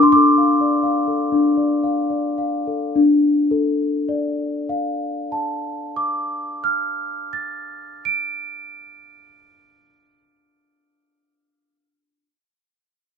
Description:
classical, lullaby for celesta; 34-46 BPM (dotted quarters); 6/8; rubato; D minor; A4 = 441 Hz
large celesta; solo; 0.0-12.3 s; D4 to D7; -18 LUFS; left 2 dB
little or no reverb; close, detailed microphones; -18 LUFS; side -6 dB against mid
0.0-3.0 A section; 3.0-10.0 B section
slowing down 0.0-3.0
0.0 Dm

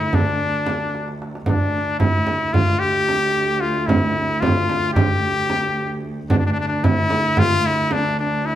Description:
Turkish makam ensemble; 223 BPM (eighths); 9/8; straight; A4 = 439 Hz
brilliant trumpet; melody; 0.0-8.6 s; D4 to G4; -20 LUFS; left 2 dB
warm cello; drone; 0.0-8.6 s; D2; -26 LUFS; right 1 dB
darbuka; percussion; 0.1-8.0 s; -24 LUFS; right 2 dB
frame drum; percussion; 0.1-8.0 s; -22 LUFS; right 2 dB
wet large studio reverb, RT60 1.3 s; band playing live in one room; -17 LUFS; side -12 dB against mid
0.0-8.6 A section
drum fill 0.9-1.5

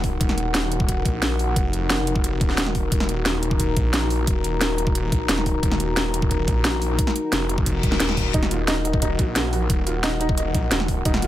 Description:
dark technical drum and bass; 177 BPM; 4/4; straight; Eb minor; A4 = 441 Hz
dark analog pad; sustained chords; 0.0-11.3 s; Eb4 to Bb5; -27 LUFS; left 2 dB; chorus, sidechain pumping
snarling distorted saw bass; bass; 0.0-11.3 s; Eb1 to Bb1; -25 LUFS; equal; distortion, tube saturation
drum and bass drum kit; drums; 0.0-11.3 s; hi-hat, snare drum; -24 LUFS; equal; overdrive
electronic kick drum; drums; 0.0-11.1 s; -22 LUFS; equal; overdrive
reverse cymbal; sound effects; 7.8-8.3 s; -31 LUFS; left 6 dB
felt-muted upright piano; arpeggios; 8.3-11.3 s; Eb4 to Eb5; -28 LUFS; right 1 dB; vintage 12-bit sampler grit, sidechain pumping, digital delay
digital ambience; -19 LUFS; side -13 dB against mid
0.0-11.3 A section
reverse cymbal 7.8-8.3
0.0 Ebm

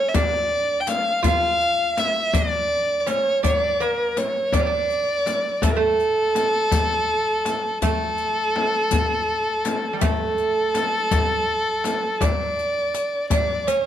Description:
Persian modal ensemble; 55 BPM (dotted quarters); 6/8; straight; D avaz esfahan; A4 = 436 Hz
dark violin; melody; 0.0-13.9 s; A4 to G5; -21 LUFS; equal
lute; second line; 0.0-13.9 s; G3 to F4; -27 LUFS; right 5 dB
frame drum; percussion; 0.1-13.5 s; -29 LUFS; left 3 dB
riq; percussion; 0.1-13.8 s; -32 LUFS; left 10 dB
tombak; percussion; 0.1-13.9 s; -25 LUFS; left 2 dB
moderate recital hall reverb, RT60 1.4 s; close, detailed microphones; -19 LUFS; side -10 dB against mid
0.0-13.9 A section
drum fill 13.7

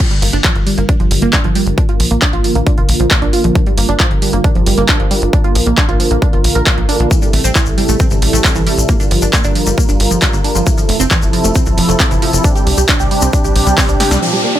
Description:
uplifting trance; 135 BPM; 4/4; straight; G dorian; A4 = 440 Hz
filtered supersaw swell; sustained chords; 0.0-14.5 s; Bb2 to Bb4; -18 LUFS; equal; sidechain pumping, low-pass filter
wide unison pluck; arpeggios; 0.0-14.6 s; E3 to F5; -19 LUFS; right 4 dB; sidechain pumping, ping-pong delay
electronic kick drum; drums; 0.0-13.9 s; -14 LUFS; equal
punchy analog drum machine; drums; 0.0-14.2 s; crash cymbal, handclaps, hi-hat, snare drum; -17 LUFS; equal; sidechain pumping on hats, sidechain pumping on cymbals
tight sequencer bass; bass; 0.2-14.2 s; F1 to C2; -16 LUFS; equal; sidechain pumping
tube shaker; percussion; 7.1-14.2 s; -22 LUFS; left 5 dB
downlifter; sound effects; 14.2-14.6 s; -19 LUFS; equal
light reverb; -10 LUFS; side -12 dB against mid
0.0-14.2 A section
filter sweep on supersaw synth 0.0-14.2; drum fill 14.0; band accent 14.1
0.0 Gm7; 1.8 Bb; 3.6 Gm7; 5.3 Bb; 7.1 Am7; 8.9 Gm7; 10.7 Fmaj7; 12.4 Csus2

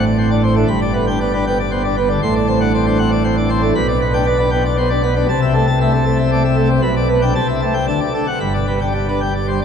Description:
classical, organ toccata; 117 BPM; 3/4; straight; G major; A4 = 440 Hz
pipe organ, plenum; solo; 0.0-9.6 s; G1 to C6; -14 LUFS; equal
wet cathedral reverb, RT60 5.7 s; dark, warm production; -14 LUFS; side -7 dB against mid
0.0-9.6 A section
0.0 D7(no3)/A; 0.7 G; 2.2 D7/A; 3.8 G/B; 5.3 Am/C; 6.8 G/B; 7.4 Am7/C; 7.9 D; 8.4 G

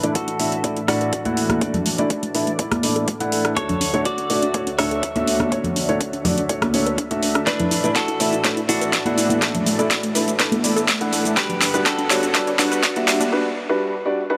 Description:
progressive house; 123 BPM; 4/4; straight; A mixolydian; A4 = 440 Hz
direct-recorded clean electric guitar; melody; 0.0-13.3 s; D4 to E5; -28 LUFS; equal; subtle chorus, sidechain pumping, low-pass filter, delay
filtered supersaw swell; sustained chords; 0.0-13.3 s; D2 to F#5; -32 LUFS; equal; phaser, sidechain pumping
unison pluck; arpeggios; 0.0-13.3 s; A3 to D5; -30 LUFS; equal; sidechain pumping, delay
felt-muted upright piano; stabs; 0.0-14.4 s; G3 to F#5; -25 LUFS; equal; sidechain pumping, low-pass filter, delay
deep house drum kit; drums; 0.0-13.3 s; hi-hat, rim click, shaker, snare drum; -25 LUFS; equal; high-pass filter on hats, high-pass filter on perc, high-pass filter on snare
electronic kick drum; drums; 0.2-12.9 s; -32 LUFS; equal
congas; percussion; 1.3-13.3 s; -28 LUFS; equal; sidechain pumping on perc
moderate huge ambient reverb, RT60 3.8 s; high-pass filter; -20 LUFS; mono
0.0-14.4 A section
build-up 0.0-14.4; filter sweep on synth pluck 0.0-14.4; filter sweep on felt piano 0.0-14.4; filter sweep on clean electric guitar 0.0-14.4; filter sweep 0.0-14.4; drum fill 7.5-13.3; break 13.3-14.4
0.0 Asus4; 3.6 Dmaj7; 7.5 Asus4; 11.4 Gmaj7

